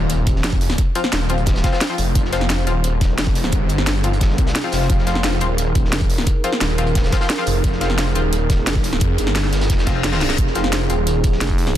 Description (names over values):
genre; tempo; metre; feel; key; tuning
dark technical drum and bass; 175 BPM; 4/4; straight; F minor; A4 = 440 Hz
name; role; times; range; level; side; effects
wide detuned saw bass; bass; 0.0-11.4 s; Eb1 to F2; -20 LUFS; equal; chorus, overdrive
impact and reverse cymbal; sound effects; 0.0-0.8, 9.8-10.4 s; none; -30 LUFS; left 2 dB; none
warbly tape-like pad; texture; 0.0-11.8 s; Eb4 to C5; -27 LUFS; right 3 dB; chorus, built-in reverb, sidechain pumping
crunchy breakbeat drum kit; drums; 0.1-11.8 s; hi-hat, snare drum; -32 LUFS; equal; high-pass filter on hats, high-pass filter on snare, high-pass filter on room
drum and bass drum kit; drums; 0.1-11.7 s; hi-hat, snare drum; -23 LUFS; equal; overdrive
electronic kick drum; drums; 0.3-11.6 s; none; -18 LUFS; equal; overdrive
band-passed chord stab; stabs; 1.0-10.9 s; F3 to F4; -26 LUFS; left 4 dB; chorus, dub echo
growling FM bass; bass; 11.4-11.7 s; F1; -21 LUFS; equal; none
room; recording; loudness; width
little or no reverb; dense, heavily limited modern master; -16 LUFS; side -12 dB against mid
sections
0.0-11.8 A section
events
impact 0.0-0.8; reverse cymbal 9.8-10.4; drum fill 10.1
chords
0.0 Fm